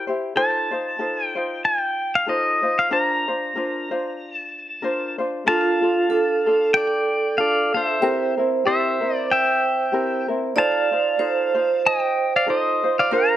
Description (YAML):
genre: Hawaiian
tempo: 94 BPM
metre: 4/4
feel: swing 57% on 8ths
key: Bb major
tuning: A4 = 440 Hz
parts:
  - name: pedal steel guitar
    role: melody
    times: 0.0-13.4 s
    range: C5 to Bb5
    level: -21 LUFS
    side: left 1 dB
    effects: slapback echo
  - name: ukulele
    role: accompaniment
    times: 0.0-13.4 s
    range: C4 to C5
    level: -25 LUFS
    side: left 2 dB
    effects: none
  - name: vibraphone with medium hard mallets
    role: second line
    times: 5.5-13.4 s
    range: F4 to D5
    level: -22 LUFS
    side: right 4 dB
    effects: none
room: light reverb, small room ambience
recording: none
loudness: -18 LUFS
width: side -12 dB against mid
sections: 0.0-5.5 A section; 5.5-13.4 A section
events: none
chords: 0.3 F7; 2.9 Bbadd9; 5.5 Bbmaj7; 8.0 C7; 10.6 F7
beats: | 0.35 0.99 1.63 2.27 | 2.90 3.54 4.18 4.82 | 5.46 6.10 6.74 7.37 | 8.01 8.65 9.29 9.92 | 10.56 11.20 11.84 12.47 | 13.11